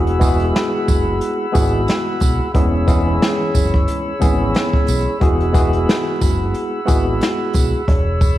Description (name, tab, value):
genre	hip hop, boom-bap hip-hop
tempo	90 BPM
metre	4/4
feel	swing 57% on 16ths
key	E major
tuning	A4 = 441 Hz
part	tine electric piano	accompaniment	0.0-7.8 s	E2 to G#4	-20 LUFS	equal	overdrive, fast stereo tremolo, high-pass filter, low-pass filter, cassette tape
part	mellow tonewheel organ	sustained chords	0.0-8.4 s	G#4 to E6	-23 LUFS	equal	slow rotary speaker, high-pass filter, low-pass filter, cassette tape
part	deep dub fingered electric bass	bass	0.0-8.4 s	E1 to B1	-20 LUFS	equal	none
part	jazz brush drum kit	drums	0.1-8.4 s	hi-hat, kick drum, snare drum	-18 LUFS	equal	cassette tape
part	tambourine	percussion	0.2-8.4 s	none	-33 LUFS	right 10 dB	none
room	studio reverb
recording	home recording on cassette, vinyl crackle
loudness	-14 LUFS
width	side -14 dB against mid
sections	0.0-8.4 A section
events	none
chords	0.0 Eadd9; 2.5 C#m7/E; 5.2 Eadd9; 7.9 C#m7/E